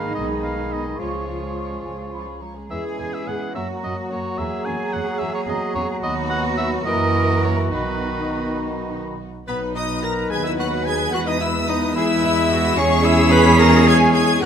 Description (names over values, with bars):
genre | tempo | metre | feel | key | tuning
quick classical-period movement for symphony orchestra | 72 BPM (dotted quarters) | 6/8 | rubato | B major | A4 = 439 Hz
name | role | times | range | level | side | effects
rich studio violin section | melody | 0.0-14.4 s | F#4 to B6 | -28 LUFS | left 2 dB | none
bright oboe | second line | 0.0-14.5 s | B4 to B5 | -28 LUFS | equal | none
mellow large flute ensemble | second line | 0.0-14.5 s | B4 to C#6 | -28 LUFS | equal | none
rich studio violin section | second line | 0.0-14.5 s | B3 to B5 | -31 LUFS | left 3 dB | none
warm clarinet | second line | 0.0-14.5 s | B3 to B4 | -28 LUFS | left 3 dB | none
warm bassoon | accompaniment | 0.0-9.2 s | D#3 to F#3 | -30 LUFS | right 1 dB | none
warm studio viola section | accompaniment | 0.0-14.5 s | E#3 to A#4 | -29 LUFS | equal | none
mellow French horn section | sustained chords | 0.0-14.5 s | D#3 to F#4 | -28 LUFS | left 7 dB | none
rich studio cello section | bass | 0.0-14.5 s | D#4 to B4 | -26 LUFS | right 4 dB | none
rich studio double bass section | bass | 0.0-14.5 s | B1 to F#2 | -23 LUFS | right 3 dB | none
mellow trumpet | stabs | 9.5-14.4 s | B4 to C#5 | -27 LUFS | equal | none
room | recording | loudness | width
moderate concert hall reverb, RT60 1.8 s | none | -17 LUFS | side -8 dB against mid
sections
0.0-9.5 A section; 9.5-14.5 B section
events
none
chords
0.1 G#m/B; 1.0 C#; 2.7 C#m/E; 3.5 F#; 4.4 F#7/E; 6.0 B/D#; 6.9 F#7; 7.7 B; 11.1 E; 12.8 C#m/E